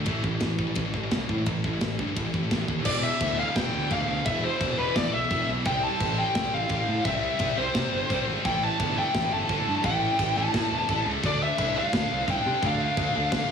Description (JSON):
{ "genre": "heavy metal", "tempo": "172 BPM", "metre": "4/4", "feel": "straight", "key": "E phrygian", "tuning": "A4 = 440 Hz", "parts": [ { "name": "scooped high-gain guitar", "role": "riff", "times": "0.0-13.5 s", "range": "E2 to D4", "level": "-29 LUFS", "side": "equal", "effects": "distortion" }, { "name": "fuzz picked electric bass", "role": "bass", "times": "0.1-13.5 s", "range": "E1 to D3", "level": "-30 LUFS", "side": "equal", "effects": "overdrive" }, { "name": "tight metal drum kit", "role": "drums", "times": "0.1-13.4 s", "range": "crash cymbal, kick drum, ride cymbal, snare drum", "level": "-30 LUFS", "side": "left 1 dB", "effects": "none" }, { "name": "high-gain lead guitar", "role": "melody", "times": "2.9-13.5 s", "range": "B4 to A5", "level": "-27 LUFS", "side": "equal", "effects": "distortion, digital delay" } ], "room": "light reverb", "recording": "small room reverb", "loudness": "-23 LUFS", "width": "side -7 dB against mid", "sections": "0.0-2.9 A section; 2.9-13.5 B section", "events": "half time 2.9-13.5", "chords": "0.1 A5; 2.9 E5; 5.7 C5; 8.4 A5; 11.2 Dm" }